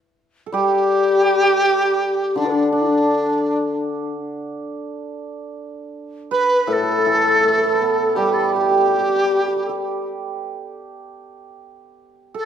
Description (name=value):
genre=chinese traditional, Chinese chamber ensemble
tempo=78-86 BPM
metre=4/4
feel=rubato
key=unclear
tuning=A4 = 440 Hz
part: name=large dizi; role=melody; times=0.5-12.5 s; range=D4 to B4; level=-20 LUFS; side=right 1 dB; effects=none
part: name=breathy mellow low xiao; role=second line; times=0.5-12.5 s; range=D4 to B4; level=-21 LUFS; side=left 4 dB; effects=none
part: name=hammered dulcimer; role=second line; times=0.5-12.5 s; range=D4 to B4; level=-24 LUFS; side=right 8 dB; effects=none
part: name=hammered dulcimer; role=accompaniment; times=0.5-10.5 s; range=A2 to B3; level=-25 LUFS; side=left 3 dB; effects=none
room=wet recital hall reverb, RT60 1.3 s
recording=none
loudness=-16 LUFS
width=side -8 dB against mid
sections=0.0-12.5 A section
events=none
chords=none